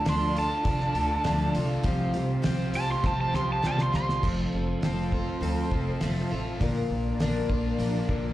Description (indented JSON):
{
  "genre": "folk rock and heartland rock",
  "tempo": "101 BPM",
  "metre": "4/4",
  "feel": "straight",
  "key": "unclear",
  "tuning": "A4 = 441 Hz",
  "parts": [
    { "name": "overdriven slide guitar", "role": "melody", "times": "0.0-4.2 s", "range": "A5 to C6", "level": "-29 LUFS", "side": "right 2 dB", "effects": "slapback echo" },
    { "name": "picked twelve-string acoustic guitar", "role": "accompaniment", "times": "0.0-8.3 s", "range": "Bb2 to Bb4", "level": "-31 LUFS", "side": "left 2 dB", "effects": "slapback echo" },
    { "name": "muted studio string section", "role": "sustained chords", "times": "0.0-8.3 s", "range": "C4 to D5", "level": "-39 LUFS", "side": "right 1 dB", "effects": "none" },
    { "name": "crunchy overdriven guitar", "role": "riff", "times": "0.0-8.3 s", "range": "F2 to F4", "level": "-33 LUFS", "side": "right 1 dB", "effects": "slapback echo" },
    { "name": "upright bass", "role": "bass", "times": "0.1-8.3 s", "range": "F1 to C3", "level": "-30 LUFS", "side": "equal", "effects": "none" },
    { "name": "cloth-damped thuddy drum kit", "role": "drums", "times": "0.1-8.2 s", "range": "crash cymbal, hi-hat, kick drum, snare drum", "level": "-31 LUFS", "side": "equal", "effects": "none" }
  ],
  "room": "light reverb, small room ambience",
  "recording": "live gig heard through the venue's PA, club reverb",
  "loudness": "-24 LUFS",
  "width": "side -14 dB against mid",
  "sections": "0.0-4.2 A section; 4.2-8.3 B section",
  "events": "electric slide guitar solo 0.0-4.2; drum fill 3.0-4.2",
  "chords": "0.0 Dm; 1.8 Csus4; 4.2 F; 6.6 Bb"
}